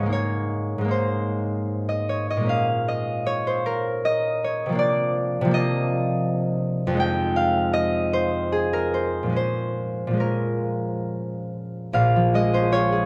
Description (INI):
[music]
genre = classical, solo harp piece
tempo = 64-83 BPM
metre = 3/4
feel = rubato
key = Bb minor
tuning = A4 = 440 Hz
[part]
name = concert harp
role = solo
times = 0.0-13.1 s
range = Bb1 to Ab5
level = -24 LUFS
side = equal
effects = none
[sound]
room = little or no reverb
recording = close, detailed microphones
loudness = -24 LUFS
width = mono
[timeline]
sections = 0.0-11.9 A section; 11.9-13.1 B section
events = none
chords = 0.1 Abadd9; 2.5 Bbm7; 4.8 Cm11; 7.0 Fm7; 9.4 Bbm7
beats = | 0.11 0.89 1.68 | 2.49 3.26 4.06 | 4.80 5.53 6.25 | 6.99 7.74 8.53 | 9.36 10.20 11.05 | 11.94 12.73